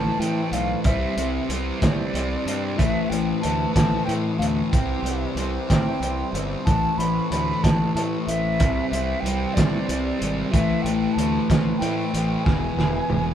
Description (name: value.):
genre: psychedelic rock.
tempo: 62 BPM (dotted quarters).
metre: 6/8.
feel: straight.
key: A minor.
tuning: A4 = 441 Hz.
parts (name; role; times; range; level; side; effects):
mellow hollow silver concert flute; melody; 0.0-13.3 s; D5 to B5; -28 LUFS; equal; none.
hand-pumped harmonium; sustained chords; 0.0-13.3 s; E3 to C5; -34 LUFS; right 4 dB; none.
fuzz guitar; riff; 0.0-13.3 s; E2 to C4; -25 LUFS; left 2 dB; distortion, phaser.
fuzz fingered electric bass; bass; 0.0-13.3 s; E1 to A2; -27 LUFS; equal; overdrive.
cloth-damped thuddy drum kit; drums; 0.2-13.3 s; hi-hat, kick drum, snare drum, toms; -23 LUFS; right 1 dB; none.
room: moderate studio reverb, RT60 0.5 s.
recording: band playing live in one room.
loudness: -20 LUFS.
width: side -10 dB against mid.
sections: 0.0-13.3 A section.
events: drum fill 12.5-13.3.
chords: 0.0 Amadd9; 0.8 C; 2.8 Amadd9; 4.7 C; 6.7 Amadd9; 8.6 C; 10.5 Amadd9; 12.5 E.